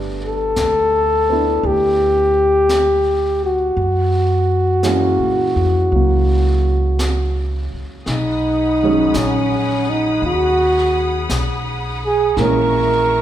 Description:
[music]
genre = jazz ballad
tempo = 56 BPM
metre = 4/4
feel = swing 68% on 8ths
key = B major from 8.1 s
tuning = A4 = 439 Hz
[part]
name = warm grand piano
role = accompaniment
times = 0.0-13.2 s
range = D#3 to E4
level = -24 LUFS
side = right 2 dB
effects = none
[part]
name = upright bass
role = bass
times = 0.0-13.2 s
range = G1 to A#2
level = -20 LUFS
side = equal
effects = none
[part]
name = breathy flugelhorn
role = melody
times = 0.3-13.2 s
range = C#4 to A#4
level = -16 LUFS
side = equal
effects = none
[part]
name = jazz brush drum kit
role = drums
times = 0.6-13.2 s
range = brushed snare drum, hi-hat, snare drum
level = -30 LUFS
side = equal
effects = none
[part]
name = rich studio string section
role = sustained chords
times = 8.1-13.2 s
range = G#4 to D#6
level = -26 LUFS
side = left 1 dB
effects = none
[sound]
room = moderate scoring stage reverb, RT60 1.9 s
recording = recorded in a church or concert hall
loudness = -14 LUFS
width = side -11 dB against mid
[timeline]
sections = 0.0-8.1 A section; 8.1-13.2 B section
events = none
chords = 0.0 Gadd9; 3.8 F#7; 8.1 B6; 12.4 A#m7b5

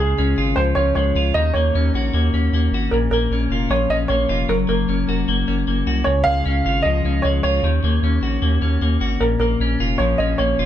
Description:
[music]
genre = jangly indie pop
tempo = 153 BPM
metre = 4/4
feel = straight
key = Bb minor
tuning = A4 = 440 Hz
[part]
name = warm upright piano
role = melody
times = 0.0-10.7 s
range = Ab4 to F5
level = -22 LUFS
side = right 2 dB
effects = tape echo
[part]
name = clean electric guitar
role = arpeggios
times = 0.0-10.7 s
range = Bb2 to Gb4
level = -21 LUFS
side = left 4 dB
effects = vibrato effect, tape echo
[part]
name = round analog bass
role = bass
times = 0.0-10.7 s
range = F1 to Eb2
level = -20 LUFS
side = right 1 dB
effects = none
[sound]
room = light reverb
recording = none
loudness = -16 LUFS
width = side -11 dB against mid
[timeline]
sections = 0.0-10.7 A section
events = none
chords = 0.0 Db; 1.4 Ebm7; 2.9 Bbm; 4.5 Gb; 6.1 Db; 7.6 Ebm7; 9.2 Bbm

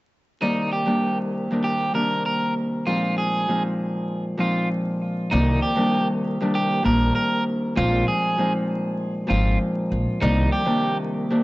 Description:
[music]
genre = hip hop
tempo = 98 BPM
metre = 4/4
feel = swing 55% on 16ths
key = C minor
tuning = A4 = 441 Hz
[part]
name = electric guitar at the edge of break-up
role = melody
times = 0.4-11.0 s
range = Eb4 to Bb4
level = -25 LUFS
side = right 1 dB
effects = high-pass filter, low-pass filter, analog delay
[part]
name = Celtic harp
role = accompaniment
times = 0.4-11.4 s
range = C2 to D5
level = -22 LUFS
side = equal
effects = high-pass filter, low-pass filter
[part]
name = upright bass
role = bass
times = 5.3-10.5 s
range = Ab1 to C2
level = -22 LUFS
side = equal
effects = tube saturation
[sound]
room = studio ambience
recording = dry, gritty hardware recording, vinyl crackle, nothing above 7.9 kHz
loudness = -20 LUFS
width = side -20 dB against mid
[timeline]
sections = 0.4-5.3 A section; 5.3-11.4 B section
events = none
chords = 0.4 Cm9; 2.9 Bb9sus4; 5.3 Cm9; 7.8 Bb9sus4; 10.2 Cm9

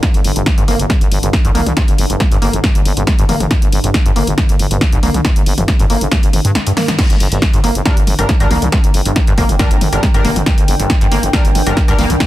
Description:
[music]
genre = driving peak-time techno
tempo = 138 BPM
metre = 4/4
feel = straight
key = G minor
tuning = A4 = 440 Hz
[part]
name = acid bass, saw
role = riff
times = 0.0-12.3 s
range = G1 to Bb3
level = -20 LUFS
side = equal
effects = ensemble chorus, sidechain pumping, dub echo
[part]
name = deep dark ambient pad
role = drone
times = 0.0-12.3 s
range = G2 to D3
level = -24 LUFS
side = equal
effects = chorus, built-in reverb, sidechain pumping
[part]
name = electronic kick drum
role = drums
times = 0.0-12.3 s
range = none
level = -13 LUFS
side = equal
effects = overdrive
[part]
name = punchy analog drum machine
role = drums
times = 0.0-12.3 s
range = crash cymbal, hi-hat, snare drum, toms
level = -18 LUFS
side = equal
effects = sidechain pumping on hats, sidechain pumping on toms, sidechain pumping on cymbals
[part]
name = growling FM bass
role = bass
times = 0.1-12.2 s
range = F1 to G2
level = -18 LUFS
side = equal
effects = sidechain pumping
[part]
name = warbly tape-like pad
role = texture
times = 8.0-12.3 s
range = D4 to G5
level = -25 LUFS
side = equal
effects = chorus, built-in reverb, sidechain pumping
[part]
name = sync-sweep polysynth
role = stabs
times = 7.9-12.0 s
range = G3 to Bb4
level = -22 LUFS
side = left 1 dB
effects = chorus, sidechain pumping, dub echo
[sound]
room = light reverb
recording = dense, heavily limited modern master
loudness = -11 LUFS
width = side -15 dB against mid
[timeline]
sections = 0.0-7.0 A section; 7.0-12.3 B section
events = filter sweep on acid bass 0.0-7.0; kick drops out 6.5-7.0; drum fill 6.8; band accent 6.9; drop 7.0-12.3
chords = 0.0 Gm

